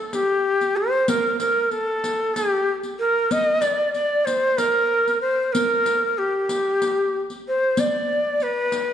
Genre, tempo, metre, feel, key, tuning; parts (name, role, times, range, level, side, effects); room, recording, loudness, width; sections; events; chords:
Turkish makam ensemble; 189 BPM (eighths); 7/8; straight; G makam nihavent; A4 = 439 Hz
breathy bright ney; melody; 0.0-8.9 s; G4 to Eb5; -19 LUFS; equal
riq; percussion; 0.1-8.9 s; -30 LUFS; left 1 dB
wet scoring stage reverb, RT60 1.8 s; nothing above 10.9 kHz, faint mains hum; -19 LUFS; side -9 dB against mid
0.0-7.8 A section; 7.8-8.9 B section